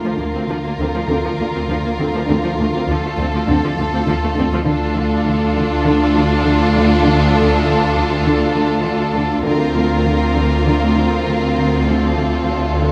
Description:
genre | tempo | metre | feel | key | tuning
cinematic, suspense film score | 100 BPM | 4/4 | straight | D minor | A4 = 440 Hz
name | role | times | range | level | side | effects
rich studio violin section | melody | 0.0-12.9 s | A4 to Bb4 | -26 LUFS | equal | none
rich symphonic violin section | second line | 0.0-12.9 s | F4 | -25 LUFS | equal | none
clear symphonic viola section | accompaniment | 0.0-12.9 s | F3 to D4 | -26 LUFS | equal | none
warm symphonic cello section | riff | 0.0-12.9 s | D3 | -24 LUFS | equal | none
rich symphonic cello section | bass | 0.0-12.9 s | D2 | -24 LUFS | equal | none
swarming drone | drone | 0.0-12.9 s | D2 | -27 LUFS | equal | none
rich symphonic double bass section | bass | 0.2-12.9 s | D2 | -24 LUFS | equal | none
cymbal swell | sound effects | 12.5-12.9 s | none | -35 LUFS | equal | none
room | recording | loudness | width
moderate scoring stage reverb, RT60 1.6 s | none | -17 LUFS | mono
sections
0.0-12.9 A section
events
cymbal swell 12.5-12.9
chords
0.0 Bbadd9/D; 2.3 F/D; 4.7 Dm; 9.5 Bbadd9/D

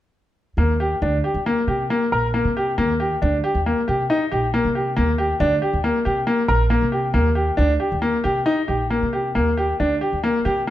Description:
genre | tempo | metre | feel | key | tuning
contemporary instrumental, chamber music in an uneven meter | 137 BPM | 5/4 | straight | Eb major | A4 = 440 Hz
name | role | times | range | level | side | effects
bright concert grand piano | arpeggios | 0.6-10.7 s | Bb3 to Bb4 | -19 LUFS | left 1 dB | none
upright bass | bass | 0.6-10.6 s | Bb1 to C3 | -23 LUFS | right 1 dB | none
room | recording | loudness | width
moderate recital hall reverb, RT60 1.3 s | dark, warm production | -18 LUFS | side -13 dB against mid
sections
0.6-10.7 A section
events
none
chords
0.6 Ebmaj7

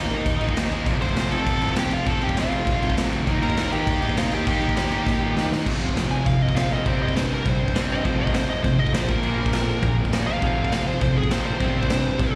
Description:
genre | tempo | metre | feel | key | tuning
punk rock | 201 BPM | 4/4 | straight | unclear | A4 = 438 Hz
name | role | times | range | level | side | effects
smooth overdriven lead guitar | melody | 0.0-12.3 s | Eb4 to C6 | -30 LUFS | equal | slapback echo
cranked stack guitar | riff | 0.0-12.3 s | F2 to Eb4 | -30 LUFS | equal | overdrive
fuzz picked electric bass | bass | 0.0-12.3 s | E1 to Eb3 | -32 LUFS | equal | overdrive
raw garage drum kit | drums | 0.1-12.3 s | crash cymbal, kick drum, snare drum | -26 LUFS | equal | none
fuzz guitar | riff | 0.9-12.4 s | F2 to Eb4 | -31 LUFS | equal | distortion, slapback echo
room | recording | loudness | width
small room ambience | live gig heard through the venue's PA, recital hall reverb | -22 LUFS | mono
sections
0.0-5.7 A section; 5.7-12.4 B section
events
drum fill 5.1-5.7; lead electric guitar solo 5.7-12.4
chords
0.0 Eb5; 0.9 F; 3.3 Eb; 5.7 F5; 6.9 C5; 8.0 F5; 9.1 Bb5; 10.4 F5; 11.6 C5

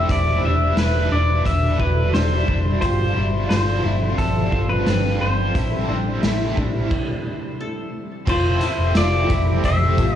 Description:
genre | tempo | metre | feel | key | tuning
dream pop | 88 BPM | 4/4 | straight | F lydian | A4 = 440 Hz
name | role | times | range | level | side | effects
pedal steel guitar | melody | 0.0-10.2 s | A4 to E5 | -24 LUFS | left 1 dB | analog delay
crunchy overdriven guitar | accompaniment | 0.0-10.2 s | A2 to C5 | -30 LUFS | right 4 dB | tremolo, lush chorus
granular cloud pad | sustained chords | 0.0-10.2 s | B2 to E5 | -26 LUFS | left 1 dB | built-in reverb
mellow electric guitar | arpeggios | 0.0-10.2 s | D4 to F4 | -28 LUFS | left 2 dB | ensemble chorus, analog delay
vintage muted fingered electric bass | bass | 0.0-10.2 s | E1 to A1 | -22 LUFS | equal | none
qanun | texture | 0.0-10.2 s | G4 to D5 | -36 LUFS | left 2 dB | analog delay
raw garage drum kit | drums | 0.1-10.1 s | crash cymbal, hi-hat, kick drum, snare drum, tambourine | -24 LUFS | equal | none
room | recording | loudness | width
studio reverb | dry, gritty hardware recording, small room ambience | -17 LUFS | side -10 dB against mid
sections
0.0-8.3 A section; 8.3-10.2 B section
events
stop 6.9-8.3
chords
0.1 Em7; 2.8 G7sus4; 5.6 Am7; 8.3 Fmaj7

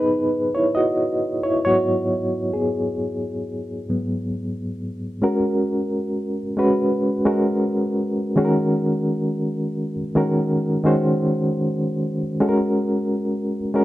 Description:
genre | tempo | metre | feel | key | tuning
R&B | 67 BPM | 4/4 | swing 53% on 16ths | G# minor | A4 = 441 Hz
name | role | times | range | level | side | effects
reed electric piano | solo | 0.0-13.8 s | G#2 to D#5 | -19 LUFS | equal | fast tremolo
room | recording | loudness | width
moderate studio reverb, RT60 0.8 s | dark, warm production | -19 LUFS | side -16 dB against mid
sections
0.0-5.2 A section; 5.2-13.8 B section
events
reed electric piano solo 0.0-5.2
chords
0.0 G#m7; 5.2 G#m11; 8.4 D#m7; 12.4 G#9sus4

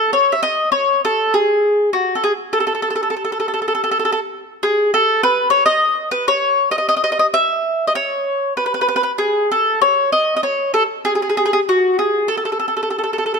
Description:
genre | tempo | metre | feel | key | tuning
italian folk | 99 BPM | 4/4 | rubato | C# minor | A4 = 438 Hz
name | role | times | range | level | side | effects
mandolin | solo | 0.0-13.4 s | F#4 to E5 | -15 LUFS | equal | none
room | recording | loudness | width
light reverb | close, detailed microphones | -15 LUFS | side -5 dB against mid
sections
0.1-13.4 A section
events
none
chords
none

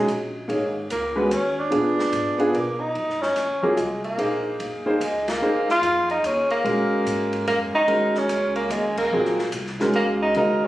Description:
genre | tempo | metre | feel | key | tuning
modal jazz | 146 BPM | 3/4 | swing 65% on 8ths | Eb dorian | A4 = 441 Hz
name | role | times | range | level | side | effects
warm tenor saxophone | melody | 0.0-10.7 s | Ab3 to F4 | -22 LUFS | equal | none
warm concert grand piano | accompaniment | 0.0-10.7 s | Db3 to C#5 | -23 LUFS | equal | none
upright bass | bass | 0.0-10.7 s | Gb1 to B2 | -36 LUFS | equal | none
open jazz drum kit | drums | 0.1-10.5 s | crash cymbal, hi-hat, kick drum, ride cymbal, snare drum | -35 LUFS | equal | none
room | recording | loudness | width
moderate large studio reverb, RT60 1.3 s | recorded on a phone in the room, studio reverb, compression | -20 LUFS | side -15 dB against mid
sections
0.0-2.9 A section; 2.9-10.7 B section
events
band accent 5.2, 8.9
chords
0.0 C#sus2; 1.7 A#7b9; 2.9 Ebm7

